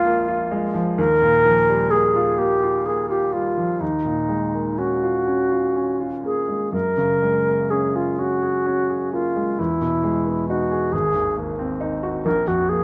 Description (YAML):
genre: classical, impressionist duo for alto flute and grand piano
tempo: 40-46 BPM (dotted quarters)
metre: 6/8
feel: rubato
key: unclear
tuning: A4 = 440 Hz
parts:
  - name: alto flute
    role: melody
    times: 0.0-12.8 s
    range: Eb4 to Bb4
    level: -22 LUFS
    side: equal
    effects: none
  - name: clear baby grand piano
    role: accompaniment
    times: 0.0-12.8 s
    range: Ab1 to Ab4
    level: -26 LUFS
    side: equal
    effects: none
room: light reverb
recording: close, detailed microphones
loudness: -21 LUFS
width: mono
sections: 0.0-12.8 A section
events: none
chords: 0.0 Bb7(no3); 1.0 Ebadd9; 3.8 Ebm11; 6.7 Gbadd9; 9.6 Emaj7; 10.9 Ab9; 12.3 Bb5